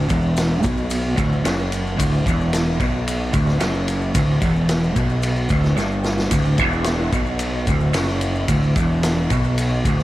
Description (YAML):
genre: psychedelic rock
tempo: 111 BPM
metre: 4/4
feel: straight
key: D major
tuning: A4 = 438 Hz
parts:
  - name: electric guitar through a small old amp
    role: riff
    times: 0.0-10.0 s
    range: D2 to B2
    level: -20 LUFS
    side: equal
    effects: rotary speaker
  - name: fuzz picked electric bass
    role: bass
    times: 0.0-10.0 s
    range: D1 to B1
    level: -24 LUFS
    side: equal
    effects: overdrive
  - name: vintage drum kit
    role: drums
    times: 0.1-10.0 s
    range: kick drum, ride cymbal, snare drum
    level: -23 LUFS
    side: equal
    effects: none
  - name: maracas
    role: percussion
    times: 0.1-10.0 s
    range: none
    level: -39 LUFS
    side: left 7 dB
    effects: none
room: light reverb, small room ambience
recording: none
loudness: -17 LUFS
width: side -16 dB against mid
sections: 0.0-10.0 A section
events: drum fill 5.8-6.3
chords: 0.0 D